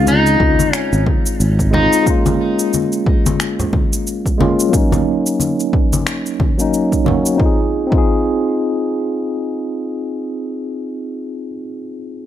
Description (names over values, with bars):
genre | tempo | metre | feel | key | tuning
sunset chillout | 90 BPM | 4/4 | swing 57% on 16ths | unclear | A4 = 441 Hz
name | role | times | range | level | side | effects
electric guitar at the edge of break-up | melody | 0.0-2.0 s | Eb4 | -18 LUFS | left 2 dB | digital delay
tine electric piano | accompaniment | 0.0-12.3 s | Gb3 to Ab4 | -18 LUFS | equal | auto-pan, tape echo
sustaining fretless electric bass | bass | 0.0-1.9 s | Ab1 to Db2 | -15 LUFS | equal | none
electronic shaker and finger snaps | drums | 0.1-7.4 s | none | -23 LUFS | equal | overdrive
congas | percussion | 0.1-7.2 s | none | -21 LUFS | left 3 dB | none
electronic kick drum | drums | 0.4-8.1 s | none | -17 LUFS | equal | overdrive
room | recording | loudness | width
light reverb, digital ambience | none | -14 LUFS | side -11 dB against mid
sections
0.0-7.4 A section; 7.4-10.1 B section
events
none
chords
0.0 Dbmaj9; 2.1 Bbm7/Ab; 4.7 Gb6; 7.4 Ab6/C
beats
0.06 0.73 1.40 | 2.06 2.73 3.40 4.06 | 4.73 5.40 6.06 6.73 | 7.40 8.06 8.73 9.40